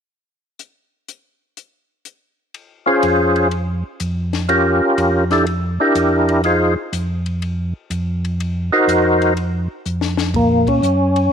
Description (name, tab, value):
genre	soul jazz organ trio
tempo	123 BPM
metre	4/4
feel	swing 68% on 8ths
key	unclear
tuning	A4 = 440 Hz
part	compact cocktail drum kit	drums	0.6-11.2 s	hi-hat, kick drum, ride cymbal, snare drum	-28 LUFS	left 6 dB	none
part	percussive tonewheel organ	melody	2.9-11.3 s	Bb3 to C5	-15 LUFS	equal	slow rotary speaker, overdrive, chorus vibrato
part	mellow tonewheel organ	bass	3.0-11.3 s	F2 to Bb2	-20 LUFS	equal	slow rotary speaker
room	moderate echo chamber reverb, RT60 1.4 s, small room ambience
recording	1960s-style stereo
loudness	-15 LUFS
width	side -7 dB against mid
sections	0.6-2.5 A section; 2.5-10.3 B section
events	drum fill 9.8-10.3; band accent 10.6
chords	0.6 N.C.; 2.5 Fm; 9.4 N.C.; 10.3 Bbm